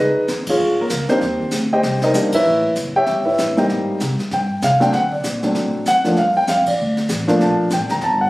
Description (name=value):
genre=jazz piano trio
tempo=194 BPM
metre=4/4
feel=swing 60% on 8ths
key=G minor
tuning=A4 = 442 Hz
part: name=warm concert grand piano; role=melody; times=0.0-8.3 s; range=F3 to Bb5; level=-16 LUFS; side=equal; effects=plate reverb
part: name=upright bass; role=bass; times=0.0-8.3 s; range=F1 to D3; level=-24 LUFS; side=equal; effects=none
part: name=jazz brush drum kit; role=drums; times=0.3-8.3 s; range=brushed snare drum, hi-hat, kick drum, ride cymbal, snare drum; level=-27 LUFS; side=equal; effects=none
room=moderate studio reverb, RT60 0.9 s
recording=recorded on a phone in the room, studio reverb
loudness=-15 LUFS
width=side -18 dB against mid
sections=0.0-8.3 A section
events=band accent 0.4, 2.3, 6.6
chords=0.0 C#9; 1.2 Cm7; 2.5 A13; 3.7 Abmaj7; 4.9 D7; 6.2 Gm7